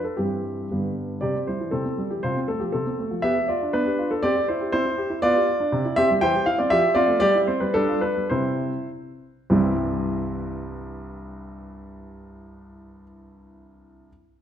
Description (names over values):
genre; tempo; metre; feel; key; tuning
classical-period piano sonatina; 98-122 BPM; 2/4; rubato; C major; A4 = 441 Hz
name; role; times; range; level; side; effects
warm baby grand piano; solo; 0.0-14.1 s; C2 to G5; -21 LUFS; equal; none
room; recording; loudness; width
wet recital hall reverb, RT60 1.4 s; faint mains hum; -21 LUFS; side -9 dB against mid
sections
0.0-1.2 A section; 1.2-9.5 B section; 9.5-11.9 C section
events
slowing down 6.7-9.5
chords
0.2 C/G; 0.7 G; 1.2 C; 2.2 F/C; 3.2 G7/B; 4.2 C; 5.2 G7/B; 5.7 C; 6.2 C/E; 6.7 Dm7/F; 7.2 C/G; 7.7 G7; 8.3 C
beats
| 0.18 0.71 | 1.23 1.74 | 2.24 2.74 | 3.24 3.74 | 4.24 4.73 | 5.22 5.72 | 6.21 6.71 | 7.22 7.75 | 8.30 8.89 | 9.49 10.09 | 10.69 11.29